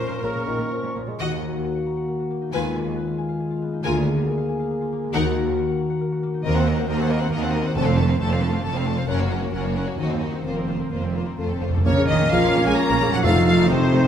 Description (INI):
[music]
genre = classical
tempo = 120-140 BPM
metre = 3/4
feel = rubato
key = Eb minor, Bb minor from 6.4 s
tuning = A4 = 441 Hz
[part]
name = rich symphonic violin section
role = melody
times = 0.0-14.1 s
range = A4 to Bb5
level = -29 LUFS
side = left 3 dB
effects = none
[part]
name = clear clarinet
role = second line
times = 0.0-0.9, 11.8-14.1 s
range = Db4 to Bb4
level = -29 LUFS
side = equal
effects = none
[part]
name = clear symphonic violin section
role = second line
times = 0.0-14.1 s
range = Bb3 to Bb5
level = -31 LUFS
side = left 2 dB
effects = none
[part]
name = mellow oboe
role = second line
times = 0.0-0.7, 11.9-14.1 s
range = A4 to Db5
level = -30 LUFS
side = right 2 dB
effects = none
[part]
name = silver concert flute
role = second line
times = 0.0-0.9, 11.9-14.1 s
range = C5 to Db6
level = -29 LUFS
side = left 1 dB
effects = none
[part]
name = mellow bassoon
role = accompaniment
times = 0.0-1.2, 11.9-14.1 s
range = Db3 to Bb3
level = -30 LUFS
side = right 2 dB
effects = none
[part]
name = warm symphonic viola section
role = accompaniment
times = 0.0-14.1 s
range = Db3 to Bb4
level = -30 LUFS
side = right 1 dB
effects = none
[part]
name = mellow French horn section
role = sustained chords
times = 0.0-14.1 s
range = Ab3 to Bb4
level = -27 LUFS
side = left 3 dB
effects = none
[part]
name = concert harp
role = arpeggios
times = 0.0-14.1 s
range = F2 to C6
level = -29 LUFS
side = left 5 dB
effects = none
[part]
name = warm symphonic cello section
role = bass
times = 0.0-14.1 s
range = D2 to Bb3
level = -26 LUFS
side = right 3 dB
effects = none
[part]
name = warm symphonic double bass section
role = bass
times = 0.0-14.1 s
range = F1 to Eb2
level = -28 LUFS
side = right 4 dB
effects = none
[part]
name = timpani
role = percussion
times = 7.8-8.4, 11.4-13.9 s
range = F2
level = -26 LUFS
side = equal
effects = none
[part]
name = warm trombone section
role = sustained chords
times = 11.9-14.1 s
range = F3 to Eb4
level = -30 LUFS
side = right 3 dB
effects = none
[part]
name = mellow tuba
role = bass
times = 11.9-14.0 s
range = F1 to Bb1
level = -28 LUFS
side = right 4 dB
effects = none
[sound]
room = wet scoring stage reverb, RT60 1.7 s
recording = none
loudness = -20 LUFS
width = side -9 dB against mid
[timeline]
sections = 0.0-1.2 A section; 1.2-11.9 B section; 11.9-14.1 A section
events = timpani fill 11.4-11.9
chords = 0.0 Bbm; 1.2 Ebm; 2.5 Fm7b5/Eb; 3.8 Bb7/D; 5.1 Ebm; 6.4 Cm7b5/Eb; 7.8 F; 9.1 Gb; 10.0 Cdim/Eb; 10.4 Fsus4; 11.4 F; 11.9 Bbm; 13.2 F7